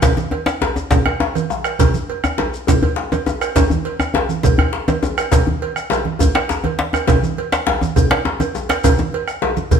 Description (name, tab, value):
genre	west african traditional, West African drum ensemble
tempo	136 BPM (dotted quarters)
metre	12/8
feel	straight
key	none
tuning	none
part	bombo	percussion	0.0-9.8 s	none	-20 LUFS	right 1 dB	none
part	congas	percussion	0.0-9.8 s	none	-21 LUFS	right 4 dB	none
part	cowbell	percussion	0.0-9.8 s	none	-24 LUFS	right 8 dB	none
part	djembe	percussion	0.0-9.8 s	none	-22 LUFS	left 4 dB	none
part	djembe	percussion	0.0-9.1 s	none	-20 LUFS	left 3 dB	none
part	shekere	percussion	0.0-9.8 s	none	-27 LUFS	left 2 dB	none
room	wet stone room reverb, RT60 1.0 s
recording	band playing live in one room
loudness	-15 LUFS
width	side -7 dB against mid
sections	0.0-9.8 A section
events	none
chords	none